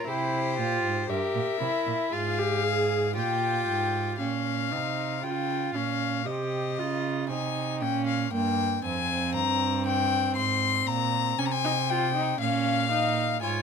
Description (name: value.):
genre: classical, baroque-style fugue for string quartet.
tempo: 58 BPM.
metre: 4/4.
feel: straight.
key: unclear.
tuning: A4 = 440 Hz.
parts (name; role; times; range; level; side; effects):
warm violin; melody; 0.0-13.6 s; C5 to C6; -29 LUFS; left 11 dB; none.
warm violin; second line; 0.0-4.2, 12.4-13.6 s; G4 to F5; -32 LUFS; left 5 dB; none.
warm viola; accompaniment; 0.0-13.6 s; Bb3 to Ab4; -30 LUFS; right 3 dB; none.
rich cello; bass; 0.1-13.6 s; F2 to Db3; -31 LUFS; right 7 dB; none.
room: little or no reverb.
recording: close, detailed microphones.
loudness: -25 LUFS.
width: side -6 dB against mid.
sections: 0.0-4.2 A section; 4.2-13.6 B section.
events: none.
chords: 0.1 C7; 2.1 Fm/Ab; 4.2 Bbm; 6.3 Ab/C; 8.3 Fmadd9; 10.4 Fm/Ab; 12.4 Bbm.